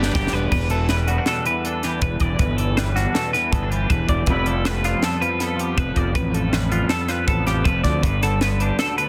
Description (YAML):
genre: math rock and midwest emo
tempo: 159 BPM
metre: 5/4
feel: straight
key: unclear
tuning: A4 = 439 Hz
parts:
  - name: twangy electric guitar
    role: accompaniment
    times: 0.0-9.1 s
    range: D2 to G4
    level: -28 LUFS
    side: equal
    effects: ensemble chorus
  - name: twelve-string electric guitar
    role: arpeggios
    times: 0.0-9.1 s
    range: F4 to D5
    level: -26 LUFS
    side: equal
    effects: spring reverb, tape echo
  - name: overdriven electric guitar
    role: riff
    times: 0.0-0.5 s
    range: G3 to G4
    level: -28 LUFS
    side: equal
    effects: none
  - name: fuzz fingered electric bass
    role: bass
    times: 0.0-8.7 s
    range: E1 to D2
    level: -25 LUFS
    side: equal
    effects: overdrive
  - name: crisp fusion drum kit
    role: drums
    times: 0.0-9.1 s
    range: crash cymbal, hi-hat, kick drum, snare drum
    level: -26 LUFS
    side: equal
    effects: none
room: light reverb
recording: dense, heavily limited modern master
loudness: -21 LUFS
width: mono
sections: 0.5-9.1 A section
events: drum fill 0.0-0.5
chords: 0.0 Gmaj7; 0.5 Em11; 4.3 Fmaj9#11; 8.0 Gadd9